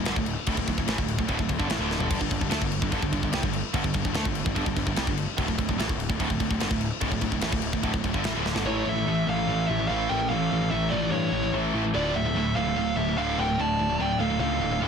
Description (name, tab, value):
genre	heavy metal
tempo	146 BPM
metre	4/4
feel	straight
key	unclear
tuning	A4 = 439 Hz
part	crunchy overdriven guitar	riff	0.0-14.9 s	D2 to A3	-32 LUFS	equal	none
part	scooped high-gain guitar	riff	0.0-14.9 s	D2 to A3	-31 LUFS	left 10 dB	distortion
part	tight distorted guitar	riff	0.0-14.9 s	D2 to A3	-32 LUFS	right 13 dB	distortion
part	fuzz picked electric bass	bass	0.0-14.9 s	D1 to G2	-31 LUFS	equal	overdrive
part	tight metal drum kit	drums	0.1-8.7 s	crash cymbal, kick drum, snare drum, toms	-29 LUFS	equal	none
part	high-gain lead guitar	melody	8.7-14.8 s	C#5 to A5	-28 LUFS	equal	distortion
part	high-gain lead guitar	second line	8.7-14.8 s	E4 to D5	-35 LUFS	right 6 dB	distortion
room	light reverb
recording	dense, heavily limited modern master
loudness	-24 LUFS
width	side -6 dB against mid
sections	0.0-8.7 A section; 8.7-14.9 B section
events	drum fill 1.9, 8.5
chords	0.0 D5; 2.1 G5; 5.4 D5; 8.7 A5; 11.9 Dm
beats	0.06 | 0.47 0.88 1.29 1.70 | 2.11 2.52 2.92 3.33 | 3.74 4.15 4.56 4.97 | 5.38 5.79 6.21 6.62 | 7.03 7.44 7.85 8.26 | 8.67 9.08 9.49 9.90 | 10.31 10.72 11.13 11.54 | 11.95 12.36 12.77 13.18 | 13.59 14.00 14.41 14.82